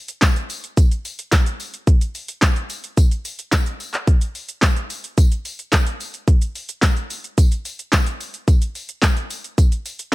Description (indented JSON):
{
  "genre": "pop",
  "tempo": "109 BPM",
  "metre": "4/4",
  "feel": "straight",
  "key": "none",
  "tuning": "none",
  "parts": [
    { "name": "house drum kit", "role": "drums", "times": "0.1-10.1 s", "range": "handclaps, hi-hat, kick drum, shaker, snare drum", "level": "-17 LUFS", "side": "equal", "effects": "none" },
    { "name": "tambourine", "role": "percussion", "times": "0.2-10.0 s", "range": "none", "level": "-36 LUFS", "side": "left 6 dB", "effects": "none" }
  ],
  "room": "digital ambience",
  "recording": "none",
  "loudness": "-18 LUFS",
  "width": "side -20 dB against mid",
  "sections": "0.0-10.1 A section",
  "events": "none",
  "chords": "none"
}